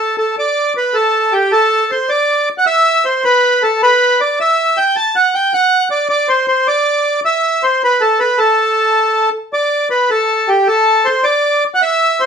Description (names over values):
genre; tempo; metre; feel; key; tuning
celtic folk; 105 BPM (dotted quarters); 6/8; straight; A dorian; A4 = 438 Hz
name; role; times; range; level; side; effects
accordion; solo; 0.0-12.3 s; G4 to A5; -11 LUFS; equal; none
room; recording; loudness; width
moderate studio reverb, RT60 0.6 s; none; -11 LUFS; side -7 dB against mid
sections
0.4-9.5 A section; 9.5-12.3 A section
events
none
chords
none